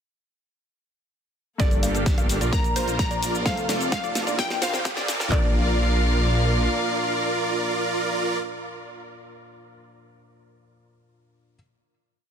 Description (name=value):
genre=EDM, festival progressive house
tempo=129 BPM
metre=4/4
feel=straight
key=Bb major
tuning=A4 = 440 Hz
part: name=glassy wavetable pluck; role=melody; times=1.6-8.4 s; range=D5 to Bb5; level=-30 LUFS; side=left 1 dB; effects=chorus, dub echo
part: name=warm baby grand piano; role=accompaniment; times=1.6-11.6 s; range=G2 to Bb4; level=-35 LUFS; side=left 3 dB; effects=vintage 12-bit sampler grit, sidechain pumping, dub echo
part: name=warm chamber string section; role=sustained chords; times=1.6-8.4 s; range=Bb2 to F5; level=-32 LUFS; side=left 2 dB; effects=sidechain pumping
part: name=wide unison pluck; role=arpeggios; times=1.6-8.4 s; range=C5 to F5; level=-36 LUFS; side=equal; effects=none
part: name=dense compressed supersaw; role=riff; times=1.6-8.4 s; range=Bb3 to F5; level=-27 LUFS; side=right 2 dB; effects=sidechain pumping, low-pass filter, dub echo
part: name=detuned saw bass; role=bass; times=1.6-6.7 s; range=F1 to Bb1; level=-26 LUFS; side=equal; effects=sidechain pumping
part: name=big-room dance drum kit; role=drums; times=1.6-5.4 s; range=handclaps, kick drum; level=-23 LUFS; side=equal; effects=overdrive, small room ambience
part: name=big-room dance drum kit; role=drums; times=1.6-5.3 s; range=hi-hat, shaker, snare drum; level=-30 LUFS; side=left 1 dB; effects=small room ambience
part: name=riser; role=sound effects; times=3.8-5.3 s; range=none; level=-37 LUFS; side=right 2 dB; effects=none
room=light reverb, digital ambience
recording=dense, heavily limited modern master, high-pass filter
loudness=-21 LUFS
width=side -8 dB against mid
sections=1.6-5.3 build; 5.3-9.0 final chord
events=build-up 1.6-5.3; drum fill 1.6-5.3; filter sweep on supersaw synth 1.6-5.3; filter sweep on synth pluck 1.6-5.3; filter sweep 1.6-5.3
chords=1.6 Gmadd9; 2.5 Bb; 3.5 F; 4.4 Bb